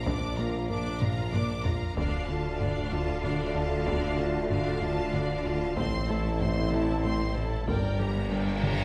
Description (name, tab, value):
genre	cinematic, hybrid orchestral and electronic film score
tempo	63 BPM (dotted quarters)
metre	6/8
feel	straight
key	unclear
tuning	A4 = 440 Hz
part	warm symphonic violin section	melody	0.0-8.8 s	F5 to D6	-41 LUFS	equal	none
part	rich symphonic violin section	second line	0.0-8.8 s	A4 to F5	-43 LUFS	equal	none
part	warm symphonic viola section	accompaniment	0.0-8.8 s	C4 to Bb4	-40 LUFS	equal	none
part	mellow French horn section	sustained chords	0.0-8.8 s	A3 to F4	-39 LUFS	equal	none
part	clear tuba	bass	0.0-8.8 s	G1 to D2	-36 LUFS	equal	none
part	pure sine sub bass	bass	0.0-8.8 s	D1 to Bb1	-40 LUFS	equal	none
part	rich studio cello section	bass	0.0-8.8 s	G2 to D3	-40 LUFS	equal	none
part	rich symphonic double bass section	bass	0.0-8.8 s	G1 to D2	-39 LUFS	equal	none
part	smooth gliding synth bass	riff	0.1-8.8 s	D2 to Bb3	-37 LUFS	equal	none
part	taiko ensemble	drums	0.1-8.8 s	none	-36 LUFS	equal	none
part	reverse cymbal	sound effects	8.1-8.8 s	none	-39 LUFS	equal	none
room	wet recital hall reverb, RT60 1.3 s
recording	recorded in a church or concert hall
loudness	-29 LUFS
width	mono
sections	0.0-8.8 A section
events	drum fill 1.0-2.0, 8.6; reverse cymbal 8.1-8.8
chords	0.0 Bb; 2.0 Dm; 5.8 Am; 7.7 Gm